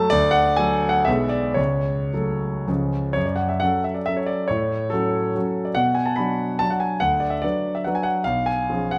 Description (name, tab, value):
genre	classical, romantic triple-time dance for piano with dotted rhythms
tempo	102-154 BPM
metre	3/4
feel	rubato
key	F# minor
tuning	A4 = 440 Hz
part	warm concert grand piano	solo	0.0-9.0 s	B1 to B5	-22 LUFS	equal	none
room	wet recital hall reverb, RT60 1.5 s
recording	none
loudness	-22 LUFS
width	mono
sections	0.0-3.2 A section; 3.2-9.0 B section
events	none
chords	0.1 D; 1.1 G#dim/B; 1.6 F#m/C#; 2.7 C#; 3.2 F#m; 4.5 F#m/A; 5.8 Bm; 7.0 Bm/D; 8.3 C#7/B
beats	| 0.11 0.58 1.08 | 1.58 2.14 2.69 | 3.17 3.62 4.07 | 4.50 4.92 5.36 | 5.77 6.19 6.62 | 7.02 7.44 7.87 | 8.28 8.71